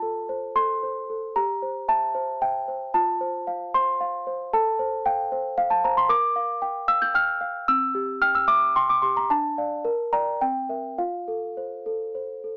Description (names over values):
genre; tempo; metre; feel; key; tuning
classical, lullaby for celesta; 102-116 BPM; 3/4; rubato; F major; A4 = 442 Hz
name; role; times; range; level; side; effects
small celesta; solo; 0.0-12.6 s; C4 to G6; -24 LUFS; equal; none
room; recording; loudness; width
light reverb; home recording on cassette, small speaker sound; -24 LUFS; mono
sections
0.0-12.6 A section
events
none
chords
0.0 F; 1.4 C7/G; 2.9 F; 4.5 F/A; 6.1 Gm7/Bb; 7.7 C; 9.3 Dm; 9.8 Gm/Bb; 10.4 C7; 11.0 F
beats
0.28 0.82 | 1.35 1.89 2.41 | 2.94 3.47 4.00 | 4.53 5.05 5.58 | 6.10 6.61 7.14 | 7.68 8.22 8.75 | 9.29 9.84 10.40 | 10.98 11.56 12.14